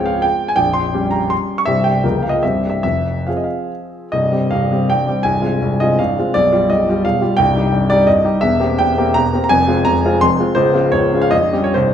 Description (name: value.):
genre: classical, romantic triple-time dance for piano with dotted rhythms.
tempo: 130-190 BPM.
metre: 3/4.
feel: rubato.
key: F minor, C minor from 4.1 s, F minor from 8.4 s.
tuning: A4 = 441 Hz.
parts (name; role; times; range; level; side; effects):
clear grand piano; solo; 0.0-11.9 s; Bb0 to Db6; -13 LUFS; equal; none.
room: wet large studio reverb, RT60 1.3 s.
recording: none.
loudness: -13 LUFS.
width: side -9 dB against mid.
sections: 0.0-4.1 A section; 4.1-11.9 B section.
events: none.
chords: 0.0 Dbmaj7; 0.6 Gdim/Bb; 1.7 C; 2.0 Bbm/Db; 2.4 C; 2.8 Fm; 4.1 Cm; 5.2 Fm/C; 6.3 G7/B; 7.4 Cm; 8.4 C7/E; 9.5 Fm; 10.6 Dbmaj7; 11.3 Gdim/Bb.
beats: 0.24 | 0.58 0.95 1.32 | 1.67 2.04 2.42 | 2.83 3.27 3.71 | 4.12 4.51 4.89 | 5.24 5.60 5.99 | 6.34 6.69 7.04 | 7.37 7.71 8.07 | 8.41 8.78 9.15 | 9.50 9.86 10.23 | 10.56 10.93 11.33 | 11.74.